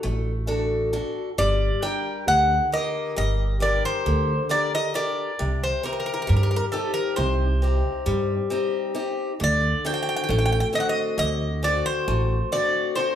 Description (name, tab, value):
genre	greek folk, Greek bouzouki band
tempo	134 BPM (eighths)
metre	9/8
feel	straight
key	G harmonic minor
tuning	A4 = 442 Hz
part	Greek bouzouki	melody	0.0-13.2 s	A4 to G5	-24 LUFS	equal	none
part	picked acoustic archtop guitar	accompaniment	0.0-13.2 s	C3 to Bb4	-27 LUFS	left 3 dB	none
part	upright bass	bass	0.0-12.4 s	G1 to G2	-24 LUFS	right 1 dB	none
room	moderate large studio reverb, RT60 0.8 s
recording	band playing live in one room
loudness	-21 LUFS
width	side -10 dB against mid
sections	0.0-1.4 A section; 1.4-13.2 B section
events	none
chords	0.0 D; 1.4 Gm; 5.4 Cm; 9.4 D7